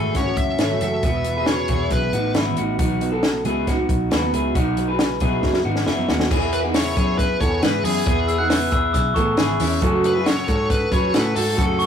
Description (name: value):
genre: jangly indie pop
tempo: 137 BPM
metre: 4/4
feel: straight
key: E major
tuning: A4 = 440 Hz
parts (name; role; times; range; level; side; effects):
- high-gain lead guitar; melody; 0.0-2.3, 6.5-11.9 s; G#4 to E5; -26 LUFS; equal; distortion
- fingerpicked twelve-string acoustic guitar; accompaniment; 0.0-11.9 s; F#2 to G#4; -26 LUFS; right 4 dB; none
- electric guitar through a small old amp; arpeggios; 0.0-11.9 s; B3 to C#5; -24 LUFS; left 2 dB; none
- vintage muted picked electric bass; bass; 0.0-11.9 s; E1 to A2; -26 LUFS; equal; none
- compact cocktail drum kit; drums; 0.1-11.9 s; crash cymbal, hi-hat, kick drum, snare drum; -22 LUFS; equal; none
- tambourine; percussion; 6.3-11.9 s; none; -40 LUFS; left 6 dB; none
- glockenspiel with soft plastic mallets; second line; 8.3-11.9 s; B5 to F#6; -25 LUFS; equal; none
room: wet studio reverb, RT60 0.5 s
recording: rough rehearsal-room recording, warm saturation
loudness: -18 LUFS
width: side -8 dB against mid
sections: 0.0-6.3 A section; 6.3-11.9 B section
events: drum fill 5.4-6.3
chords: 0.0 F#m7; 1.0 Esus2; 2.8 B; 6.3 E; 9.8 F#m